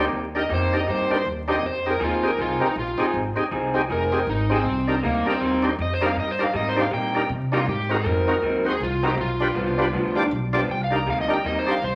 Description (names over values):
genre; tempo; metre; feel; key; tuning
blues; 159 BPM; 4/4; swing 64% on 8ths; C minor; A4 = 440 Hz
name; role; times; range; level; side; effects
tonewheel organ; accompaniment; 0.0-11.8 s; C4 to D5; -28 LUFS; equal; slow rotary speaker, overdrive
electric guitar through a small old amp; riff; 0.0-11.7 s; G2 to Ab4; -30 LUFS; equal; spring reverb
upright bass; bass; 0.0-11.9 s; F1 to C3; -31 LUFS; equal; none
overdriven slide guitar; melody; 0.4-11.9 s; Bb3 to Bb5; -27 LUFS; equal; none
room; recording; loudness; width
wet large studio reverb, RT60 0.8 s; vinyl crackle; -23 LUFS; mono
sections
0.0-11.9 A section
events
electric slide guitar solo 0.0-11.9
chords
0.0 Cm7; 1.6 Fm7; 4.6 Cm7; 7.7 Ab7; 9.2 G7; 10.7 Cm7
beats
| 0.12 0.49 0.87 1.25 | 1.63 2.00 2.38 2.76 | 3.14 3.52 3.89 4.27 | 4.65 5.03 5.40 5.78 | 6.16 6.54 6.91 7.29 | 7.67 8.04 8.42 8.80 | 9.18 9.55 9.93 10.31 | 10.68 11.06 11.44 11.82